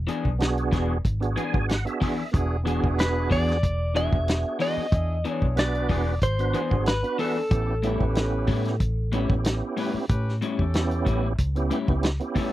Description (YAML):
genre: straight-eighth soul blues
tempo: 93 BPM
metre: 4/4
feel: swing 53% on 16ths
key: unclear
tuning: A4 = 439 Hz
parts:
  - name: direct-recorded clean electric guitar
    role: melody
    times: 0.0-12.0 s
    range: A4 to E5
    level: -29 LUFS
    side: equal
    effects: none
  - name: vintage muted fingered electric bass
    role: bass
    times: 0.0-12.2 s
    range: E1 to A2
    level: -26 LUFS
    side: equal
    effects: none
  - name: electric guitar through a small old amp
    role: stabs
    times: 0.1-12.5 s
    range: A2 to G#4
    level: -29 LUFS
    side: left 5 dB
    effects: none
  - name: warm soul drum kit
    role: drums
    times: 0.1-12.5 s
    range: hi-hat, kick drum, snare drum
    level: -26 LUFS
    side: equal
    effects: none
  - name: tonewheel organ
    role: accompaniment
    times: 0.4-12.5 s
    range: B3 to G#5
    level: -29 LUFS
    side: right 4 dB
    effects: slow rotary speaker, chorus vibrato
  - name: warm horn section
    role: sustained chords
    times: 2.3-12.5 s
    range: C#4 to B4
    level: -36 LUFS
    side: equal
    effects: none
room: little or no reverb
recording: dry, close 1970s-style studio recording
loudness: -22 LUFS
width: side -15 dB against mid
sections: 0.0-12.5 A section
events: tonewheel organ fill 1.0-2.3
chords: 0.0 E7; 7.5 A7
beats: 0.40 1.05 1.69 | 2.34 2.98 3.63 4.28 | 4.92 5.57 6.22 6.86 | 7.51 8.16 8.80 9.45 | 10.10 10.74 11.39 12.04